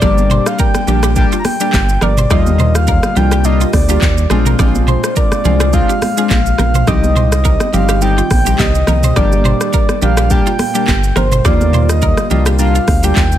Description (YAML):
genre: afrobeats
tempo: 105 BPM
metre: 4/4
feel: swing 55% on 16ths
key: unclear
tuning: A4 = 441 Hz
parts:
  - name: breathy flute-like synth lead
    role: melody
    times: 0.0-13.4 s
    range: C5 to Bb5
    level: -19 LUFS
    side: equal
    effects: chorus, tape echo
  - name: warm analog keys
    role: accompaniment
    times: 0.0-13.2 s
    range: D3 to G4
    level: -18 LUFS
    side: left 4 dB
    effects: chorus
  - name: deep dark ambient pad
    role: sustained chords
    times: 0.0-13.4 s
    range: Bb2 to G4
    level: -24 LUFS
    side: equal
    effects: chorus, built-in reverb
  - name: electric guitar at the edge of break-up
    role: riff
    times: 0.0-13.3 s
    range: F4 to Eb5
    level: -24 LUFS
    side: right 5 dB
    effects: wide subtle chorus, tape echo
  - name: round analog bass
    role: bass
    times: 0.0-13.4 s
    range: G1 to Eb2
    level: -14 LUFS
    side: equal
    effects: none
  - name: afro-pop drum kit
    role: drums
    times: 0.0-13.4 s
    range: handclaps, hi-hat, kick drum, rim click, shaker, toms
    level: -16 LUFS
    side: equal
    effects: none
  - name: congas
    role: percussion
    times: 0.0-13.3 s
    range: none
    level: -22 LUFS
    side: right 3 dB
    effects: none
room: digital ambience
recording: none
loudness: -10 LUFS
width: side -11 dB against mid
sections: 0.0-13.4 A section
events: none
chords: 0.0 Gm; 2.3 Ebmaj7; 4.3 Bb7; 6.9 Cm; 9.2 Gm; 11.4 Ebmaj7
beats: | 0.02 0.59 1.16 1.74 | 2.31 2.88 3.45 4.02 | 4.59 5.16 5.74 6.31 | 6.88 7.45 8.02 8.59 | 9.16 9.73 10.31 10.88 | 11.45 12.02 12.59 13.16